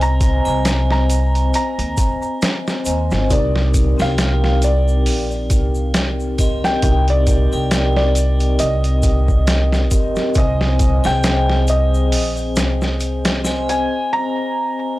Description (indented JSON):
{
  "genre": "trip hop",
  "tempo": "68 BPM",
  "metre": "4/4",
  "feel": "swing 57% on 16ths",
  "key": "C minor",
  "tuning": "A4 = 440 Hz",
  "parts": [
    { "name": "felt-muted upright piano", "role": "melody", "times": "0.0-14.9 s", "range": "D5 to Bb5", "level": "-23 LUFS", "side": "equal", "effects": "vintage 12-bit sampler grit, tape echo" },
    { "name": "vibraphone with medium mallets", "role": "accompaniment", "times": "0.0-15.0 s", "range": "C4 to Ab5", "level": "-22 LUFS", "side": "left 1 dB", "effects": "harmonic tremolo, tape echo" },
    { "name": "upright bass", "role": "bass", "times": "0.0-13.9 s", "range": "G1 to Eb2", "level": "-17 LUFS", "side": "equal", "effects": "none" },
    { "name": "trip hop sampler-style drum kit", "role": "drums", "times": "0.0-13.9 s", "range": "hi-hat, kick drum, snare drum", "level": "-20 LUFS", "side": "equal", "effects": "none" },
    { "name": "egg shaker and triangle", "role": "percussion", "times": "0.0-13.8 s", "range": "none", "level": "-33 LUFS", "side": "left 1 dB", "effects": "none" }
  ],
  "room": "studio ambience",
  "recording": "dry, gritty hardware recording, transformer saturation",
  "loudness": "-15 LUFS",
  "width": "side -17 dB against mid",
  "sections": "0.0-15.0 A section",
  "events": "none",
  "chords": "0.0 Ab; 3.3 Cm7; 10.4 Ab"
}